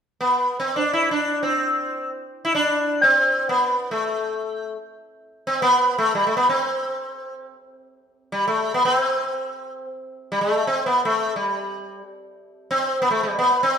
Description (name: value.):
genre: indian classical, Hindustani.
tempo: free time.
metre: none.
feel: none.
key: C raga bilaval.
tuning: A4 = 440 Hz.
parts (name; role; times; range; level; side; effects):
sitar; solo; 0.2-13.8 s; G3 to E4; -19 LUFS; equal; none.
room: wet stone room reverb, RT60 1.2 s.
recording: band playing live in one room.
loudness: -19 LUFS.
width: side -7 dB against mid.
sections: 0.0-13.8 A section.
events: none.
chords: none.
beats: free time.